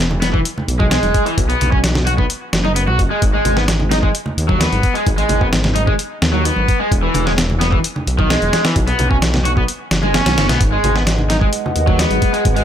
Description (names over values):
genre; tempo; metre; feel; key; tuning
breakbeat, breaks; 130 BPM; 4/4; straight; G# minor; A4 = 440 Hz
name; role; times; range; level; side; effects
detuned saw bass; bass; 0.0-12.6 s; E1 to D#2; -18 LUFS; equal; tube saturation
congas; percussion; 0.1-12.2 s; none; -25 LUFS; right 2 dB; none
raw garage guitar; riff; 0.2-12.6 s; D#3 to F#4; -19 LUFS; equal; overdrive, tube saturation, tape echo
dusty soul sampler-style drum kit; drums; 0.2-12.6 s; hi-hat, kick drum, snare drum; -17 LUFS; equal; none
dark analog pad; sustained chords; 11.0-12.6 s; G#3 to F#5; -22 LUFS; equal; chorus, phaser, sidechain pumping
room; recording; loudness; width
little or no reverb; none; -13 LUFS; side -9 dB against mid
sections
0.0-12.6 A section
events
kick drops out 9.7-10.6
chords
0.0 E; 1.4 B5; 3.2 G#m; 6.9 E; 8.8 B5; 10.6 G#m7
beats
0.45 0.91 | 1.38 1.84 2.30 2.76 | 3.22 3.68 4.14 4.61 | 5.07 5.53 5.99 6.45 | 6.91 7.38 7.84 8.30 | 8.76 9.22 9.68 10.14 | 10.61 11.07 11.53 11.99 | 12.45